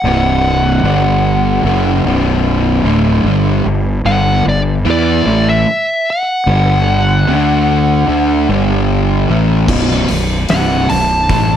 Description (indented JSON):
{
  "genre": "stoner and doom metal",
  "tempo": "74 BPM",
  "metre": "4/4",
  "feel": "straight",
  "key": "unclear",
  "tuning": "A4 = 440 Hz",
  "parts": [
    { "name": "fuzz lead guitar", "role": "melody", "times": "0.0-11.6 s", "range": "D5 to A5", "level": "-16 LUFS", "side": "equal", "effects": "distortion, slapback echo" },
    { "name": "fuzz guitar", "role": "riff", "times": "0.0-11.6 s", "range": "B1 to E4", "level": "-14 LUFS", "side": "equal", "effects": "distortion" },
    { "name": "fuzz fingered electric bass", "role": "bass", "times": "0.0-11.6 s", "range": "B0 to E2", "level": "-16 LUFS", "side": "equal", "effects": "overdrive" },
    { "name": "oversized low-tuned drum kit", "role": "drums", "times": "9.7-11.5 s", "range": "crash cymbal, hi-hat, kick drum, snare drum", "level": "-17 LUFS", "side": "equal", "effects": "none" }
  ],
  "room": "light reverb",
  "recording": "none",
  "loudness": "-11 LUFS",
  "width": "side -9 dB against mid",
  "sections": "0.0-11.6 A section",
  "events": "none",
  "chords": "0.0 C5; 0.8 G5; 1.6 Bm; 3.3 G5; 7.3 D5; 8.1 G5; 9.7 B5",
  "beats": "| 0.04 0.84 1.65 2.45 | 3.25 4.05 4.86 5.66 | 6.47 7.27 8.08 8.88 | 9.69 10.50 11.30"
}